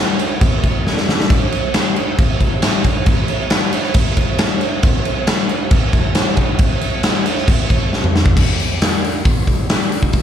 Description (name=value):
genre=rock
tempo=136 BPM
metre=4/4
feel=straight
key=none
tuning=none
part: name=huge arena drum kit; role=drums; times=0.2-10.2 s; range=crash cymbal, hi-hat, kick drum, snare drum, toms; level=-14 LUFS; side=equal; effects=none
room=light reverb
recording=live gig heard through the venue's PA, club reverb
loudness=-14 LUFS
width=side -9 dB against mid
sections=0.0-8.4 A section; 8.4-10.2 B section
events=drum fill 0.9-1.3, 7.9-8.4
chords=none